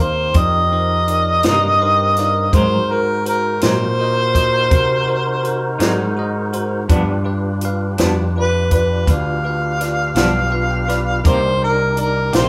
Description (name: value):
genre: slow blues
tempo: 55 BPM (dotted quarters)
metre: 12/8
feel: straight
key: C minor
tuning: A4 = 440 Hz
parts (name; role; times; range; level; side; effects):
- mellow harmonica; melody; 0.0-12.5 s; Bb4 to F5; -20 LUFS; equal; none
- bell-like tine electric piano; accompaniment; 0.0-12.5 s; Eb4 to C6; -28 LUFS; equal; none
- tonewheel organ; sustained chords; 0.0-12.5 s; C4 to C5; -30 LUFS; equal; slow rotary speaker, overdrive
- modern bright picked electric bass; bass; 0.0-12.5 s; Bb1 to C3; -23 LUFS; equal; none
- compact cocktail drum kit; drums; 0.3-12.5 s; hi-hat, kick drum, snare drum; -20 LUFS; equal; none
- clean electric guitar; accompaniment; 1.4-12.5 s; G2 to G4; -25 LUFS; equal; tremolo
room: moderate large studio reverb, RT60 0.9 s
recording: band playing live in one room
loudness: -17 LUFS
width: mono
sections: 0.0-12.5 A section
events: tine electric piano fill 1.4-2.5, 10.2-11.2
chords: 0.0 Cm7; 2.5 Ab7; 6.9 G7; 11.2 Cm7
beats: 0.36 1.45 | 2.54 3.63 4.72 5.80 | 6.89 7.98 9.07 10.16 | 11.25 12.34